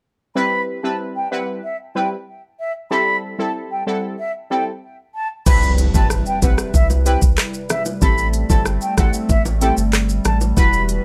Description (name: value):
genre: dancehall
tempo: 94 BPM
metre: 4/4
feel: straight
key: unclear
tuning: A4 = 440 Hz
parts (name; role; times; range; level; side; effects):
- mellow concert flute; melody; 0.4-10.8 s; E5 to B5; -25 LUFS; equal; digital delay
- synth brass stab; accompaniment; 0.4-11.0 s; G3 to B4; -26 LUFS; equal; chorus
- hollow soft pad; sustained chords; 6.0-11.0 s; C3 to B4; -29 LUFS; equal; chorus, sidechain pumping
- round analog bass; bass; 5.5-11.0 s; E1 to C2; -21 LUFS; equal; none
- island pop drum kit; drums; 5.5-11.0 s; crash cymbal, handclaps, hi-hat, kick drum, rim click, shaker; -19 LUFS; equal; none
- bongos; percussion; 5.5-10.7 s; none; -33 LUFS; equal; none
- impact; sound effects; 5.6-8.0 s; none; -30 LUFS; equal; none
room: light reverb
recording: none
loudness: -19 LUFS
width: mono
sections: 0.4-5.5 A section; 5.5-11.0 B section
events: impact 5.5-8.0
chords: 0.4 Cmaj7; 2.9 Am7; 5.5 Cmaj7; 8.0 Am7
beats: | 0.36 1.00 1.64 2.27 | 2.91 3.55 4.19 4.83 | 5.46 6.10 6.74 7.38 | 8.02 8.66 9.29 9.93 | 10.57